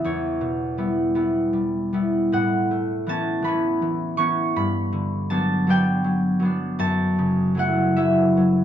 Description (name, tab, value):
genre	classical, solo harp piece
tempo	53 BPM (dotted quarters)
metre	6/8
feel	uneven beats, rubato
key	A major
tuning	A4 = 440 Hz
part	concert harp	solo	0.0-8.6 s	E2 to C#6	-19 LUFS	equal	none
room	moderate studio reverb, RT60 0.5 s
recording	dark, warm production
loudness	-20 LUFS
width	side -10 dB against mid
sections	0.0-8.6 A section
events	none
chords	0.0 Em6; 2.3 A69; 4.5 Gmaj7; 6.8 F#m7